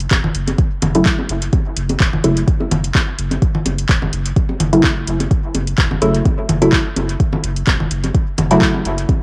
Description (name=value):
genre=dub techno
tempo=127 BPM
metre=4/4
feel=swing 54% on 16ths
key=F# minor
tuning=A4 = 440 Hz
part: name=round analog bass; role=bass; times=0.0-9.1 s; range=E1 to F#1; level=-24 LUFS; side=equal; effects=tube saturation, sidechain pumping
part: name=soft vintage rhythm box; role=drums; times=0.0-9.2 s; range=handclaps, hi-hat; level=-24 LUFS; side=equal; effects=dub echo
part: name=electronic kick drum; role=drums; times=0.1-9.2 s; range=none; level=-18 LUFS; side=equal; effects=overdrive
part: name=bongos and congas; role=percussion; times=0.1-9.2 s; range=none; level=-24 LUFS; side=equal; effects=sidechain pumping on perc, dub echo
part: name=filtered dub chord stab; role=stabs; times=0.9-9.2 s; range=C#3 to E4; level=-20 LUFS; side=equal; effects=chorus, phaser, sidechain pumping, cassette tape, dub echo
room=light reverb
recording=home recording on cassette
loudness=-16 LUFS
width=mono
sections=0.0-9.2 A section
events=filter sweep on synth stab 0.0-9.2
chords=0.0 F#m7